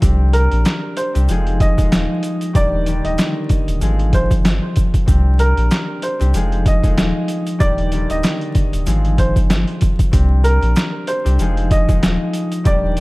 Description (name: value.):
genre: hip hop, boom-bap hip-hop.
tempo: 95 BPM.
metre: 4/4.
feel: swing 57% on 16ths.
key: C minor.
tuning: A4 = 440 Hz.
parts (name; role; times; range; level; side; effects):
concert harp; accompaniment; 0.0-13.0 s; D3 to Ab4; -22 LUFS; left 2 dB; high-pass filter, low-pass filter.
sub bass with octave; bass; 0.0-13.0 s; D1 to C2; -16 LUFS; equal; none.
boom bap sampler-style drum kit; drums; 0.0-13.0 s; handclaps, hi-hat, kick drum, snare drum; -17 LUFS; equal; overdrive.
egg shaker; percussion; 0.0-13.0 s; none; -40 LUFS; right 5 dB; none.
warm upright piano; melody; 0.3-13.0 s; Bb4 to Eb5; -23 LUFS; right 1 dB; high-pass filter, low-pass filter, digital delay.
room: studio reverb.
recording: dark, warm production, vinyl crackle.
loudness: -14 LUFS.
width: side -22 dB against mid.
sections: 0.0-10.1 A section; 10.1-13.0 B section.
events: none.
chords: 0.0 Csus2; 1.3 Fm7; 2.6 Ebmaj7; 3.8 Ab6; 5.1 Csus2; 6.3 Fm7; 7.6 Ebmaj7; 8.9 Ab6; 10.1 Csus2; 11.4 Fm7.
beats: | 0.03 0.66 1.29 1.92 | 2.55 3.18 3.81 4.45 | 5.08 5.71 6.34 6.97 | 7.61 8.24 8.87 9.50 | 10.13 10.76 11.39 12.03 | 12.66.